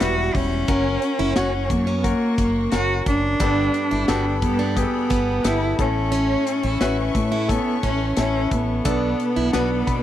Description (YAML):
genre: piano-driven pop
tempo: 88 BPM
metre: 4/4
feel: straight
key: unclear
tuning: A4 = 438 Hz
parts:
  - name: warm cello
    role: melody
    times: 0.0-10.0 s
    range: A3 to F#4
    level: -23 LUFS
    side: equal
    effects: none
  - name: bright grand piano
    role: accompaniment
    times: 0.0-10.0 s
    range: G2 to B5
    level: -26 LUFS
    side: left 5 dB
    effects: none
  - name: clear studio string section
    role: sustained chords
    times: 0.0-10.0 s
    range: G3 to C#6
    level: -35 LUFS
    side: left 2 dB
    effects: none
  - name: picked plugged-in steel-string acoustic guitar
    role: riff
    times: 0.0-9.7 s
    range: A#3 to F#4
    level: -28 LUFS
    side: right 5 dB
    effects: none
  - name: mellow fretless electric bass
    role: bass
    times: 0.0-10.0 s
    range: E1 to B2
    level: -25 LUFS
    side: equal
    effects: ensemble chorus
  - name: modern studio drum kit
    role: drums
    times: 0.0-10.0 s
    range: hi-hat, kick drum, snare drum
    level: -25 LUFS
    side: equal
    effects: none
room: little or no reverb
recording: dry, close 1970s-style studio recording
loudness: -18 LUFS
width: side -12 dB against mid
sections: 0.0-10.0 A section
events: grand piano fill 9.5-10.0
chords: 0.0 Emadd9; 0.7 F#; 3.4 Gadd9; 5.8 A; 8.9 Bm7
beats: 0.01 | 0.69 1.37 2.05 2.73 | 3.41 4.09 4.77 5.45 | 6.13 6.81 7.49 8.17 | 8.85 9.53